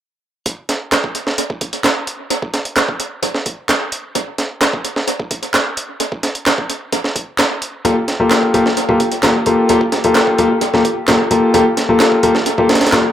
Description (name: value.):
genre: breakbeat, breaks.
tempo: 130 BPM.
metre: 4/4.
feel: straight.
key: G minor.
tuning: A4 = 438 Hz.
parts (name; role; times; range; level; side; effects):
breakbeat sampler-style drum kit; drums; 0.5-13.0 s; hi-hat, kick drum, snare drum; -17 LUFS; right 1 dB; high-pass filter on hats, high-pass filter on kick, high-pass filter on snare, analog delay.
electronic handclaps; drums; 0.9-13.0 s; none; -20 LUFS; right 1 dB; none.
warm grand piano; stabs; 7.8-13.0 s; Bb3 to A4; -12 LUFS; left 2 dB; vintage 12-bit sampler grit, analog delay.
room: wet spring reverb, RT60 1.4 s.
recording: echo-heavy mix.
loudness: -14 LUFS.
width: side -10 dB against mid.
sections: 0.5-13.1 A section.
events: none.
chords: 0.5 Gm9.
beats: | 0.46 0.93 1.39 1.85 | 2.31 2.77 3.23 3.69 | 4.16 4.62 5.08 5.54 | 6.00 6.46 6.92 7.39 | 7.85 8.31 8.77 9.23 | 9.69 10.16 10.62 11.08 | 11.54 12.00 12.46 12.93.